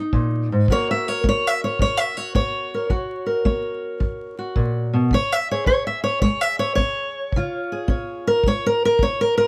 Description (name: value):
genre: acoustic country blues, solo or duo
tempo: 108 BPM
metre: 4/4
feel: swing 67% on 8ths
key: F# major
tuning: A4 = 440 Hz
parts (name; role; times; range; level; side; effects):
- fingerpicked steel-string acoustic guitar; melody; 0.0-9.5 s; F#2 to E5; -22 LUFS; equal; none
- kick drum; drums; 0.1-9.2 s; none; -25 LUFS; equal; none
room: moderate booth ambience, RT60 0.2 s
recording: vinyl crackle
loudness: -21 LUFS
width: mono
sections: 0.0-9.5 A section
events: steel-string acoustic guitar solo 0.0-9.5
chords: 0.0 N.C.; 0.7 F#; 5.1 C#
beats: 0.14 | 0.69 1.25 1.80 2.35 | 2.91 3.46 4.01 4.57 | 5.12 5.68 6.23 6.79 | 7.34 7.89 8.45 9.00